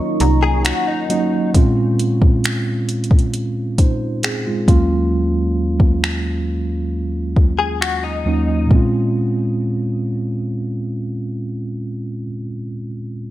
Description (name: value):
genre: contemporary R&B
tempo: 67 BPM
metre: 4/4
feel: straight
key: Bb minor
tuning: A4 = 439 Hz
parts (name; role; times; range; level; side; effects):
- mellow tine electric piano; accompaniment; 0.0-13.3 s; Eb2 to Bb5; -19 LUFS; right 1 dB; medium stereo tremolo
- deep dark ambient pad; sustained chords; 0.0-1.5 s; Eb4 to Db6; -24 LUFS; right 3 dB; chorus, built-in reverb, sidechain pumping
- slap-like FM bass; bass; 0.2-0.7 s; C2; -16 LUFS; equal; none
- smooth R&B drum kit; drums; 0.2-8.9 s; finger snaps, hi-hat, kick drum; -16 LUFS; equal; vintage 12-bit sampler grit
- direct-recorded clean electric guitar; arpeggios; 0.4-1.5, 7.6-8.7 s; Eb4 to Ab4; -22 LUFS; left 7 dB; ensemble chorus, tape echo
room: light reverb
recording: none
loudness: -16 LUFS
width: side -14 dB against mid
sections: 0.0-8.7 A section; 8.7-12.3 B section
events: tine electric piano fill 0.0-1.5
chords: 0.0 Ebm7; 1.5 Bbm9; 4.7 Ebm7; 8.7 Bbm9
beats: 0.65 | 1.54 2.44 3.33 4.23 | 5.12 6.02 6.92 7.81 | 8.71 9.60 10.50 11.39